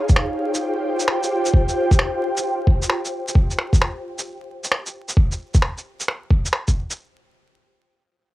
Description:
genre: future garage.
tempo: 132 BPM.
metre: 4/4.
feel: swing 66% on 16ths.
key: unclear.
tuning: A4 = 441 Hz.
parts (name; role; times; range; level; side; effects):
ethereal airy pad; sustained chords; 0.0-3.3 s; F4 to G5; -23 LUFS; equal; ensemble chorus, built-in reverb, vintage 12-bit sampler grit, sidechain pumping, cassette tape.
electronic kick drum; drums; 0.1-6.7 s; none; -16 LUFS; equal; overdrive.
electronic shaker and finger snaps; drums; 0.1-7.0 s; none; -22 LUFS; equal; overdrive.
room: light reverb.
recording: home recording on cassette, vinyl crackle.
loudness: -18 LUFS.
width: side -16 dB against mid.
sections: 0.0-7.0 A section; 7.0-8.3 B section.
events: none.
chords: 0.0 Fsus2; 3.3 N.C..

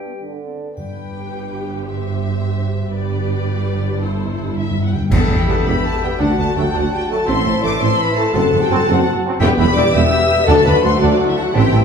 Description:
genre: cinematic, heroic adventure film score.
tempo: 111 BPM (dotted quarters).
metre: 6/8.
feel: straight.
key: G major, E minor from 5.1 s.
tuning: A4 = 440 Hz.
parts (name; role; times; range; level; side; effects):
clear clarinet; second line; 0.0-0.2, 5.1-11.8 s; G4 to F#5; -28 LUFS; left 2 dB; none.
silver concert flute; second line; 0.0-0.2, 5.1-11.8 s; G5 to C6; -32 LUFS; equal; none.
clear trombone section; sustained chords; 0.0-0.7, 5.5-11.8 s; G2 to C4; -26 LUFS; right 2 dB; none.
warm French horn section; sustained chords; 0.1-0.8, 4.6-11.8 s; B3 to E5; -20 LUFS; left 4 dB; none.
clear symphonic violin section; melody; 0.8-11.8 s; C5 to E6; -27 LUFS; left 3 dB; none.
dark symphonic violin section; second line; 0.8-11.8 s; A4 to E6; -26 LUFS; left 3 dB; none.
dark symphonic viola section; accompaniment; 0.8-11.8 s; G3 to G4; -22 LUFS; equal; none.
rich symphonic cello section; bass; 0.8-11.8 s; D2 to A2; -22 LUFS; right 3 dB; none.
rich symphonic double bass section; bass; 0.8-11.8 s; E1 to D2; -22 LUFS; right 3 dB; none.
timpani; percussion; 0.8-1.3, 4.0-5.1, 9.4-9.9 s; E2 to G2; -26 LUFS; left 2 dB; none.
triangle, cymbal swell, clash cymbals and concert bass drum; percussion; 0.8-5.8 s; none; -22 LUFS; equal; none.
mellow cor anglais; second line; 5.1-11.8 s; G5 to A5; -28 LUFS; right 2 dB; none.
mellow tuba; bass; 5.1-11.8 s; E1 to D2; -23 LUFS; right 2 dB; none.
room: wet recital hall reverb, RT60 1.4 s.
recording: recorded in a church or concert hall.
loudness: -14 LUFS.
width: side -6 dB against mid.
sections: 0.8-5.1 A section; 5.1-11.8 B section.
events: timpani fill 4.0-5.1; band accent 5.1-5.5.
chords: 0.0 G; 4.0 Am/G; 5.1 Em; 6.2 D; 7.3 Am; 8.3 F#dim; 9.4 Em; 10.5 D.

